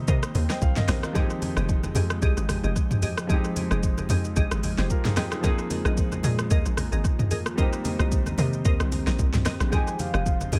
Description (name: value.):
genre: amapiano.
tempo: 112 BPM.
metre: 4/4.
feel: swing 55% on 16ths.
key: F minor.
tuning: A4 = 441 Hz.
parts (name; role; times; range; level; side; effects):
warm grand piano; accompaniment; 0.0-10.6 s; F3 to G5; -35 LUFS; equal; tape echo.
glassy FM pad; sustained chords; 0.0-10.6 s; Eb3 to G5; -37 LUFS; equal; ensemble chorus, built-in reverb, sidechain pumping.
glassy wavetable pluck; stabs; 0.0-10.6 s; G4 to Eb5; -37 LUFS; equal; chorus, tape echo.
tight log drum bass; bass; 0.0-10.6 s; F1 to C3; -28 LUFS; equal; none.
deep house drum kit; drums; 0.1-10.6 s; hi-hat, kick drum, rim click, shaker, snare drum, toms; -28 LUFS; equal; tape echo.
congas; percussion; 0.3-10.6 s; none; -36 LUFS; equal; none.
soft octave-layered synth lead; melody; 9.7-10.6 s; F5 to Ab5; -34 LUFS; equal; chorus, phaser, tape echo.
room: little or no reverb.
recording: echo-heavy mix.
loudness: -25 LUFS.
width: mono.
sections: 0.0-10.6 A section.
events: none.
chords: 0.0 Cm7; 1.2 Fm9; 5.4 Bb7sus4; 7.6 Cm7; 9.7 Fm9.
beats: 0.08 0.62 | 1.15 1.69 2.22 2.76 | 3.29 3.83 4.37 4.90 | 5.44 5.97 6.51 7.04 | 7.58 8.12 8.65 9.19 | 9.72 10.26.